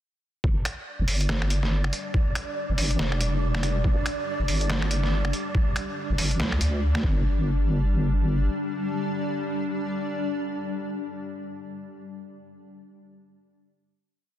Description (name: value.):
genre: deep dubstep.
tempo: 141 BPM.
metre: 4/4.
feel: swing 60% on 16ths, half-time.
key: unclear.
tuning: A4 = 437 Hz.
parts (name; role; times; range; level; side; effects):
granular cloud pad; sustained chords; 1.2-11.5 s; G3 to D4; -32 LUFS; left 2 dB; built-in reverb.
deep soft wobble bass; bass; 0.4-8.5 s; F1 to D2; -24 LUFS; equal; chorus.
electronic kick drum; drums; 0.4-7.1 s; none; -24 LUFS; equal; overdrive.
wind-like tuned noise texture; texture; 0.9-7.3 s; D5; -35 LUFS; right 2 dB; built-in reverb.
trip hop sampler-style drum kit; drums; 0.7-7.0 s; finger snaps, hi-hat, snare drum; -30 LUFS; equal; overdrive.
room: light reverb, digital ambience.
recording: dense, heavily limited modern master.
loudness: -23 LUFS.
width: side -12 dB against mid.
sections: 0.4-7.2 drop; 7.2-10.7 final hit.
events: drop 0.4-7.2.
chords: 0.4 G5.